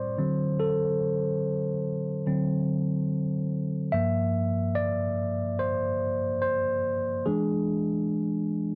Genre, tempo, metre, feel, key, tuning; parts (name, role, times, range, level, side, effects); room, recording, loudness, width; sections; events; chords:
R&B; 72 BPM; 4/4; swing 63% on 16ths; G dorian; A4 = 443 Hz
tine electric piano; solo; 0.0-8.8 s; G2 to E5; -28 LUFS; equal; phaser
little or no reverb; dry, close 1970s-style studio recording; -28 LUFS; mono
0.0-8.8 A section
tine electric piano solo 0.0-8.8
0.2 D7; 3.9 Gm7; 7.3 E7